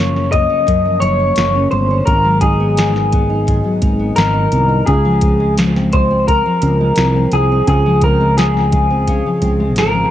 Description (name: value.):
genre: indie pop, bedroom pop.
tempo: 86 BPM.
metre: 4/4.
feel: straight.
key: Db major.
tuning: A4 = 440 Hz.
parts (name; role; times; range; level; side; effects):
electric guitar at the edge of break-up; melody; 0.0-10.1 s; Ab4 to Eb5; -16 LUFS; left 1 dB; lush chorus, cassette tape, tape echo.
nylon-string guitar; accompaniment; 0.0-10.1 s; Gb2 to Eb4; -20 LUFS; left 2 dB; analog chorus, warbly pitch drift, cassette tape.
mellow fretless electric bass; bass; 0.0-10.0 s; Gb1 to Db2; -16 LUFS; equal; none.
soft vintage rhythm box; drums; 0.2-9.9 s; hi-hat, kick drum, snare drum; -18 LUFS; equal; overdrive, cassette tape.
room: light reverb, digital ambience.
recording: home recording on cassette.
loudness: -11 LUFS.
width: side -12 dB against mid.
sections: 0.0-10.1 A section.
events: none.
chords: 0.0 Gbmaj7; 2.1 Abm7; 4.9 Dbmaj7.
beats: 0.68 1.38 | 2.08 2.78 3.48 4.18 | 4.88 5.58 6.28 6.97 | 7.67 8.37 9.07 9.77.